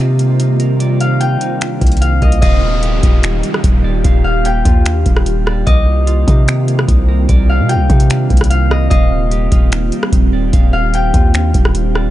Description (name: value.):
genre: hip hop, atmospheric cloud-rap.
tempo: 148 BPM.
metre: 4/4.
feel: half-time.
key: Eb major.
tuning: A4 = 438 Hz.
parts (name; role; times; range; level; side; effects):
concert harp; melody; 0.0-12.1 s; Eb5 to G5; -21 LUFS; left 2 dB; tape echo.
glassy FM pad; sustained chords; 0.0-12.1 s; C3 to G4; -20 LUFS; equal; ensemble chorus, built-in reverb, sidechain pumping.
clean electric guitar; arpeggios; 0.0-12.1 s; G3 to D6; -25 LUFS; right 7 dB; spring reverb, tape echo.
long sustained 808-style bass; bass; 0.0-12.1 s; Eb1 to C3; -14 LUFS; equal; none.
booming analog drum machine; drums; 0.0-12.0 s; finger snaps, hi-hat, kick drum, rim click; -12 LUFS; equal; none.
downlifter; sound effects; 2.4-5.7 s; none; -27 LUFS; equal; none.
room: little or no reverb.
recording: nothing above 10.9 kHz.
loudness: -10 LUFS.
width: side -14 dB against mid.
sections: 0.0-2.4 A section; 2.4-12.1 B section.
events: none.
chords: 0.0 Cm11; 2.4 Ebmaj9; 5.7 Cm11; 8.9 Ebmaj9.